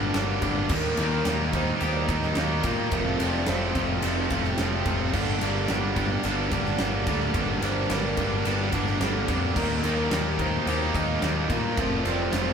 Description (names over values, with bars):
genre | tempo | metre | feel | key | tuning
post-rock | 108 BPM | 4/4 | straight | G minor | A4 = 440 Hz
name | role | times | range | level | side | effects
twangy electric guitar | arpeggios | 0.0-12.5 s | G2 to A4 | -35 LUFS | left 3 dB | spring reverb
distorted electric guitar | riff | 0.0-12.5 s | F2 to Eb4 | -30 LUFS | left 5 dB | distortion
overdriven electric guitar | riff | 0.0-12.5 s | F2 to F4 | -28 LUFS | right 6 dB | none
fuzz picked electric bass | bass | 0.0-12.5 s | F1 to Bb2 | -29 LUFS | left 1 dB | overdrive
vibraphone with hard mallets | arpeggios | 0.1-12.5 s | A4 to Eb5 | -35 LUFS | right 4 dB | none
big rock drum kit | drums | 0.1-12.5 s | crash cymbal, kick drum, ride cymbal, snare drum | -30 LUFS | left 1 dB | none
room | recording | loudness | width
moderate stone room reverb, RT60 1.3 s | band playing live in one room | -23 LUFS | side -7 dB against mid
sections
0.0-12.5 A section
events
none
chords
0.0 Gmadd9; 0.7 Eb; 2.9 Fadd9; 5.1 Gmadd9; 9.6 Eb; 11.8 Fadd9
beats
0.15 | 0.70 1.26 1.81 2.37 | 2.92 3.48 4.03 4.59 | 5.14 5.69 6.25 6.80 | 7.35 7.90 8.46 9.01 | 9.56 10.11 10.67 11.22 | 11.77 12.33